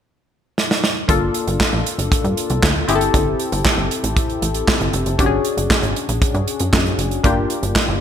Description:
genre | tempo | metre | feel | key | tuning
early-eighties boogie funk | 117 BPM | 4/4 | straight | unclear | A4 = 440 Hz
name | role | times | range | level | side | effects
modern studio drum kit | drums | 0.6-7.9 s | handclaps, hi-hat, kick drum, snare drum | -18 LUFS | right 1 dB | gated reverb
funky polysynth comp | accompaniment | 1.1-8.0 s | Bb3 to A4 | -21 LUFS | left 4 dB | chorus
plucky analog bass | bass | 1.1-8.0 s | F1 to G2 | -21 LUFS | right 1 dB | none
room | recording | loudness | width
light reverb, studio reverb | bright 1980s-style digital production | -16 LUFS | side -9 dB against mid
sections
0.0-1.1 A section; 1.1-8.0 B section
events
drum fill 0.6-1.1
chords
0.0 N.C.; 1.1 Gm9; 2.9 Am7/G; 5.2 Bb7#9b13/G (rootless); 7.2 Bb6

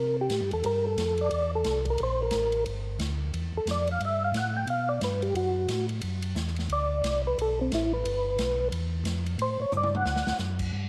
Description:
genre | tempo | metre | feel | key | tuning
soul jazz organ trio | 178 BPM | 4/4 | swing 62% on 8ths | unclear | A4 = 440 Hz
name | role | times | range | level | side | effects
percussive tonewheel organ | melody | 0.0-10.4 s | C4 to G5 | -30 LUFS | equal | slow rotary speaker, chorus vibrato
mellow tonewheel organ | bass | 0.0-10.9 s | G1 to C3 | -33 LUFS | equal | slow rotary speaker
swinging big-band drum kit | drums | 0.3-10.7 s | crash cymbal, hi-hat, kick drum, ride cymbal, snare drum, toms | -39 LUFS | equal | none
room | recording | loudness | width
moderate spring reverb, RT60 2.5 s | none | -28 LUFS | mono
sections
0.0-10.7 A section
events
tonewheel organ solo 0.0-10.7; drum fill 9.7-10.4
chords
0.0 C7; 2.7 G9; 5.3 D9; 8.0 G; 8.7 N.C.; 9.4 Gsus24; 10.1 D

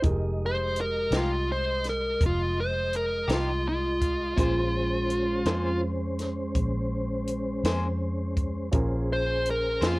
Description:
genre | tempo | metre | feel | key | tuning
slow blues | 55 BPM (dotted quarters) | 12/8 | straight | unclear | A4 = 439 Hz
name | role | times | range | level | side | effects
dark upright piano | accompaniment | 0.0-10.0 s | Db4 to C5 | -35 LUFS | right 2 dB | none
mellow tonewheel organ | sustained chords | 0.0-10.0 s | Ab3 to Eb5 | -33 LUFS | equal | chorus vibrato, lush chorus
vintage muted fingered electric bass | bass | 0.0-10.0 s | F1 to F2 | -30 LUFS | equal | none
compact cocktail drum kit | drums | 0.0-10.0 s | hi-hat, kick drum, snare drum | -28 LUFS | equal | none
dark smooth lead guitar | melody | 0.5-10.0 s | F4 to C5 | -27 LUFS | equal | overdrive
electric guitar at the edge of break-up | accompaniment | 1.1-10.0 s | F3 to C5 | -34 LUFS | left 2 dB | tremolo
room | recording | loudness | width
moderate club reverb, RT60 0.8 s | worn, warbling old tape, cassette tape, warbly pitch drift | -25 LUFS | side -22 dB against mid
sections
0.0-10.0 A section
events
lead electric guitar solo 0.0-10.0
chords
0.0 Fm9; 4.4 Bbm9

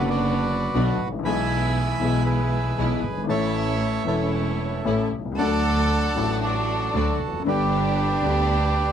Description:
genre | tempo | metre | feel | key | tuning
tango | 116 BPM | 4/4 | rubato | D major | A4 = 441 Hz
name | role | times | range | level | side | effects
bandoneon | melody | 0.0-8.9 s | E4 to B5 | -26 LUFS | right 4 dB | none
warm upright piano | accompaniment | 0.0-8.9 s | E1 to A4 | -26 LUFS | left 5 dB | none
clear symphonic string section | stabs | 0.0-8.9 s | F#3 to G4 | -31 LUFS | right 3 dB | none
clear double bass | bass | 0.0-8.9 s | E1 to D2 | -26 LUFS | right 1 dB | none
warm chamber violin section | second line | 5.4-8.9 s | D4 to A4 | -29 LUFS | equal | none
room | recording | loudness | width
light reverb | none | -20 LUFS | side -8 dB against mid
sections
0.0-8.9 A section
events
none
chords
0.0 Bm; 1.2 E/B; 3.3 A; 5.4 D; 7.5 G

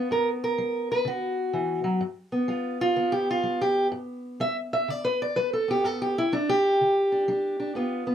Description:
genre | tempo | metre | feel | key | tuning
acoustic country blues, solo or duo | 125 BPM | 4/4 | swing 65% on 8ths | G mixolydian | A4 = 442 Hz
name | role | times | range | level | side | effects
fingerpicked steel-string acoustic guitar | solo | 0.0-8.1 s | G2 to E5 | -23 LUFS | equal | none
room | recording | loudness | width
light reverb | close, detailed microphones | -23 LUFS | side -9 dB against mid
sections
0.0-2.0 A section; 2.0-8.1 B section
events
steel-string acoustic guitar solo 2.0-8.1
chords
0.0 G; 1.0 D; 2.0 G7

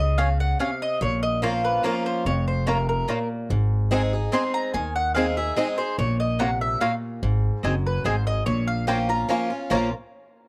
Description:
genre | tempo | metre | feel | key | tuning
bluegrass | 145 BPM | 3/4 | straight | Bb minor | A4 = 440 Hz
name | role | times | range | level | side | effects
mandolin | melody | 0.0-9.9 s | Bb4 to C6 | -29 LUFS | equal | none
picked swing-style acoustic guitar | accompaniment | 0.0-9.9 s | F2 to Ab4 | -29 LUFS | equal | none
upright bass | bass | 0.0-9.9 s | F1 to Eb2 | -27 LUFS | equal | none
mandolin | stabs | 0.2-9.9 s | Bb3 to Bb5 | -32 LUFS | equal | none
bluegrass banjo | melody | 2.7-9.9 s | Bb3 to Bb4 | -33 LUFS | equal | none
room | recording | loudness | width
small room ambience | dry, close 1970s-style studio recording | -24 LUFS | mono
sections
0.0-7.2 A section; 7.2-9.7 B section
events
none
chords
0.0 Db; 1.0 Bbm; 3.5 Ab; 6.0 Bbm; 7.2 Ab; 8.5 Bbm

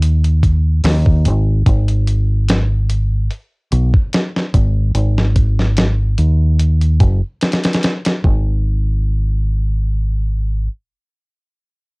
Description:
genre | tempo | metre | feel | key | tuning
trip hop | 73 BPM | 4/4 | swing 53% on 16ths | G# minor | A4 = 439 Hz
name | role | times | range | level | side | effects
deep dub fingered electric bass | bass | 0.0-10.7 s | F#1 to D#2 | -14 LUFS | equal | none
dusty soul sampler-style drum kit | drums | 0.0-8.4 s | hi-hat, kick drum, snare drum | -15 LUFS | equal | cassette tape
room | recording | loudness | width
little or no reverb | home recording on cassette | -13 LUFS | side -38 dB against mid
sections
0.0-8.2 A section; 8.2-11.5 B section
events
none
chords
none

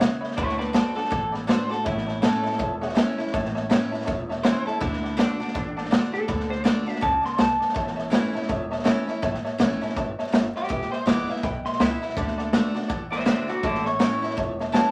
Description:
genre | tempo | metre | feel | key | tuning
rockabilly | 163 BPM | 4/4 | swing 60% on 8ths | A major | A4 = 438 Hz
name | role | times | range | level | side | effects
picked steel-string acoustic guitar | accompaniment | 0.0-14.9 s | E2 to F#4 | -33 LUFS | equal | none
tack piano | accompaniment | 0.0-14.9 s | B4 to B5 | -34 LUFS | equal | none
upright bass | bass | 0.0-14.8 s | E1 to D2 | -37 LUFS | equal | none
raw garage drum kit | drums | 0.0-14.8 s | hi-hat, kick drum, snare drum | -27 LUFS | equal | none
electric guitar through a small old amp | melody | 0.4-14.9 s | C4 to C6 | -30 LUFS | equal | none
room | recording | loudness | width
wet small room reverb, RT60 0.6 s | vinyl crackle | -24 LUFS | mono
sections
0.0-14.9 A section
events
none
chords
0.4 D; 1.9 A; 4.8 D; 7.8 A; 10.7 E; 12.2 D; 13.6 A

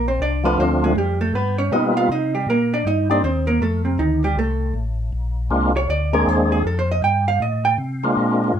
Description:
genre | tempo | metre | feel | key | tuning
soul jazz organ trio | 158 BPM | 4/4 | swing 64% on 8ths | unclear | A4 = 445 Hz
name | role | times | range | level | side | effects
vintage hollow-body jazz guitar | accompaniment | 0.0-7.7 s | C3 to G5 | -20 LUFS | right 3 dB | none
tonewheel organ | bass | 0.0-8.6 s | A1 to C3 | -22 LUFS | left 1 dB | chorus vibrato, slow rotary speaker
percussive tonewheel organ | melody | 0.4-3.2, 5.5-8.6 s | F3 to Ab4 | -19 LUFS | left 1 dB | slow rotary speaker, overdrive, chorus vibrato, plate reverb
room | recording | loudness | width
moderate club reverb, RT60 0.6 s | none | -17 LUFS | side -9 dB against mid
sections
0.0-8.2 A section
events
hollow-body jazz guitar solo 0.0-8.2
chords
0.0 Bbadd9; 0.6 Dm7; 1.3 G7alt; 2.1 Cm7; 3.6 F9; 5.1 Bb9; 6.6 Fadd9

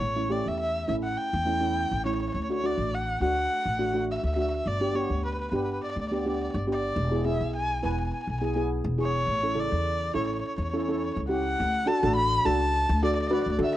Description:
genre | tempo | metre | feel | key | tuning
calypso | 104 BPM | 4/4 | swing 53% on 16ths | D major | A4 = 440 Hz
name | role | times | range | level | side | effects
warm erhu | melody | 0.0-13.8 s | B4 to B5 | -29 LUFS | equal | plate reverb
upright bass | bass | 0.0-13.7 s | E1 to D3 | -30 LUFS | equal | none
steel pan | accompaniment | 0.2-13.8 s | C#3 to B4 | -29 LUFS | equal | cassette tape, plate reverb
room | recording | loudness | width
moderate studio reverb, RT60 0.6 s | home recording on cassette | -25 LUFS | side -13 dB against mid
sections
0.0-11.6 A section; 11.6-13.8 B section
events
none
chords
0.0 A7; 2.3 D; 4.7 G; 7.0 E; 9.3 A; 11.6 D

